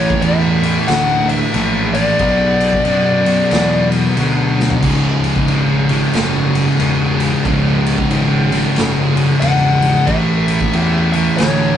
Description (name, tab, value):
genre	stoner and doom metal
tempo	91 BPM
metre	4/4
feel	swing 62% on 8ths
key	C# phrygian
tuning	A4 = 442 Hz
part	fuzz lead guitar	melody	0.0-3.9, 9.4-11.8 s	C#5 to F#5	-17 LUFS	left 2 dB	distortion
part	high-gain distorted guitar	riff	0.0-11.8 s	C#2 to B3	-23 LUFS	equal	distortion
part	thick fuzz guitar	riff	0.0-11.8 s	C#2 to B3	-19 LUFS	left 3 dB	distortion
part	thick fuzz guitar	riff	0.0-11.8 s	C#2 to B3	-18 LUFS	right 2 dB	distortion
part	fuzz picked electric bass	bass	0.0-11.8 s	C#1 to F#2	-21 LUFS	equal	overdrive
part	raw garage drum kit	drums	0.1-11.6 s	crash cymbal, kick drum, ride cymbal, snare drum, toms	-20 LUFS	equal	none
room	moderate stone room reverb, RT60 1.1 s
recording	rough rehearsal-room recording, nothing above 10.4 kHz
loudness	-12 LUFS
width	side -10 dB against mid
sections	0.0-11.8 A section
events	drum fill 4.5-4.8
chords	0.0 A5; 2.2 Bm; 4.8 C#m; 10.1 A